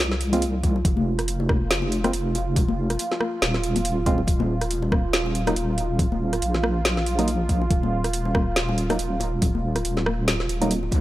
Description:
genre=deep dubstep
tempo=140 BPM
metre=4/4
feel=swing 57% on 16ths, half-time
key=unclear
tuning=A4 = 438 Hz
part: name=dark analog pad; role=sustained chords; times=0.0-11.0 s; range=F4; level=-30 LUFS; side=right 2 dB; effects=chorus, vintage 12-bit sampler grit
part: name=deep soft wobble bass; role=bass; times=0.0-11.0 s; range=Eb1 to Db2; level=-25 LUFS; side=equal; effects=chorus
part: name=garage drum kit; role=drums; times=0.1-11.0 s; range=hi-hat, rim click, snare drum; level=-26 LUFS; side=equal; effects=overdrive
part: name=percussive organ stab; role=stabs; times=0.3-10.7 s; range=Gb3 to F4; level=-29 LUFS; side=right 2 dB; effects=chorus, dub echo
part: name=congas and bongos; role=percussion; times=0.3-11.0 s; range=none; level=-30 LUFS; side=left 4 dB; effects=dub echo
part: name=electronic kick drum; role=drums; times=0.6-11.0 s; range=none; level=-23 LUFS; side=equal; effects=overdrive
room=light reverb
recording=dry, gritty hardware recording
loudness=-21 LUFS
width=side -15 dB against mid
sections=0.0-11.0 A section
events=none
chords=0.0 Fm; 4.3 Eb5

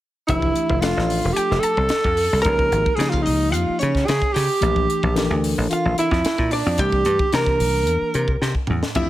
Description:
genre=electric jazz fusion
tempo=111 BPM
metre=4/4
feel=straight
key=F major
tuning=A4 = 441 Hz
part: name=warm alto saxophone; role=melody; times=0.3-9.1 s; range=Db4 to Bb4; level=-21 LUFS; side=right 2 dB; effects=slapback echo
part: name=archtop guitar, miked and amplified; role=second line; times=0.3-9.1 s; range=Db5 to Bb5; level=-30 LUFS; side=left 2 dB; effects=none
part: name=mellow tine electric piano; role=accompaniment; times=0.3-9.1 s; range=E3 to Bb4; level=-26 LUFS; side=left 4 dB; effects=phaser
part: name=dry thumbed slap bass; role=bass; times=0.3-9.1 s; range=E1 to Db3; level=-22 LUFS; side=equal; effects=none
part: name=crisp fusion drum kit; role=drums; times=0.3-9.1 s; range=hi-hat, kick drum, snare drum, splash cymbal, toms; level=-25 LUFS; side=left 1 dB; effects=none
room=light reverb, small room ambience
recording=none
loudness=-17 LUFS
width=side -14 dB against mid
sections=0.3-9.1 A section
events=drum fill 8.4-9.0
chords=0.3 Fmaj13; 2.5 Db6; 4.6 Bb6; 6.8 C9

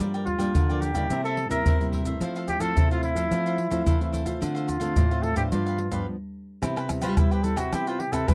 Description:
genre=samba and choro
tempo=109 BPM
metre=4/4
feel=straight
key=C major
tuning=A4 = 443 Hz
part: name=cavaquinho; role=accompaniment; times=0.0-8.3 s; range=D4 to G5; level=-39 LUFS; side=equal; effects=none
part: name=nylon-string guitar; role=accompaniment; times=0.0-8.3 s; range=G2 to F4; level=-35 LUFS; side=equal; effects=none
part: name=nylon-string guitar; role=bass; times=0.0-8.3 s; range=G2 to G3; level=-32 LUFS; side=equal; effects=none
part: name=maracas, surdo, pandeiro and tamborim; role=percussion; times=0.0-8.3 s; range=none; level=-28 LUFS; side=equal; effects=none
part: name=mellow trumpet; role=melody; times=0.3-8.3 s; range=E4 to B4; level=-31 LUFS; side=equal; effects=none
room=light reverb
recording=dry, close 1970s-style studio recording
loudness=-25 LUFS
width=mono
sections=0.0-6.6 A section; 6.6-8.3 B section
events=stop 6.1-6.6; trumpet solo 6.6-8.3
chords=0.0 Gm7; 1.1 C7; 2.2 Fmaj7; 4.4 Dm7; 5.5 G7; 6.6 Cmaj7

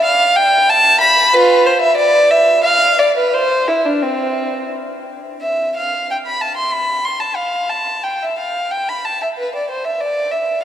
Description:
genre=classical, baroque-style suite movement for unaccompanied violin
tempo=92 BPM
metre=3/4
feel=rubato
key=unclear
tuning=A4 = 441 Hz
part: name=dark violin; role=solo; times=0.0-10.6 s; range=C4 to C6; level=-13 LUFS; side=equal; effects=none
room=wet cathedral reverb, RT60 6.4 s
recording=none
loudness=-13 LUFS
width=side -10 dB against mid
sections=0.0-5.4 A section; 5.4-10.6 B section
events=none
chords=none

